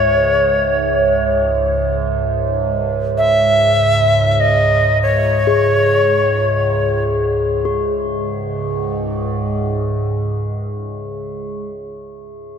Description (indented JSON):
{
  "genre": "world meditative, free-time meditation music",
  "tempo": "free time",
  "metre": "none",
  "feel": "none",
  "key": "C# minor",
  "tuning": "A4 = 440 Hz",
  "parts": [
    { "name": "bright reedy Native American-style cedar flute", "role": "melody", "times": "0.0-7.0 s", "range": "C#5 to E5", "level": "-15 LUFS", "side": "left 1 dB", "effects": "ping-pong delay" },
    { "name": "evolving wavetable pad", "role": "drone", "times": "0.0-11.1 s", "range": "C#2 to G#2", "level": "-20 LUFS", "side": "right 2 dB", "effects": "chorus, built-in reverb, phaser" },
    { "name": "bronze singing bowl", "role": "texture", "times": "0.0-11.1 s", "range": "G#4 to E5", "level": "-20 LUFS", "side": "equal", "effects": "none" }
  ],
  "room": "wet huge ambient reverb, RT60 4.0 s",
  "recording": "none",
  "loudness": "-14 LUFS",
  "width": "side -7 dB against mid",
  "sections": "0.0-7.6 A section; 7.6-11.4 B section",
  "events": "none",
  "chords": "none",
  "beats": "free time"
}